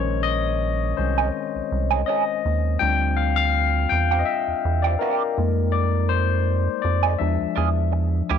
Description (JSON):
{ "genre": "R&B", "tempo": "82 BPM", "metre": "4/4", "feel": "swing 54% on 16ths", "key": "unclear", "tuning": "A4 = 440 Hz", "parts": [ { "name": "barky tine electric piano", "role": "accompaniment", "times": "0.0-8.4 s", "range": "Eb3 to G5", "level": "-23 LUFS", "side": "left 10 dB", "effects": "lush chorus" }, { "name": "rubbery square bass", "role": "bass", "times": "0.0-8.4 s", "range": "Bb1 to F2", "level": "-22 LUFS", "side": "right 2 dB", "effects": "none" }, { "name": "electric guitar at the edge of break-up", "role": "second line", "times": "1.2-8.4 s", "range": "Bb3 to Ab4", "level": "-24 LUFS", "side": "right 16 dB", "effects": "wah" } ], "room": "moderate spring reverb, RT60 2.4 s", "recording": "1960s-style stereo with parts hard left and right", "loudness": "-20 LUFS", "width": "side -8 dB against mid", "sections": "0.0-8.4 A section", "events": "tine electric piano solo 0.0-8.4", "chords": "0.0 Bbm11; 2.8 Dm11; 5.4 Fm11; 7.2 E7b9" }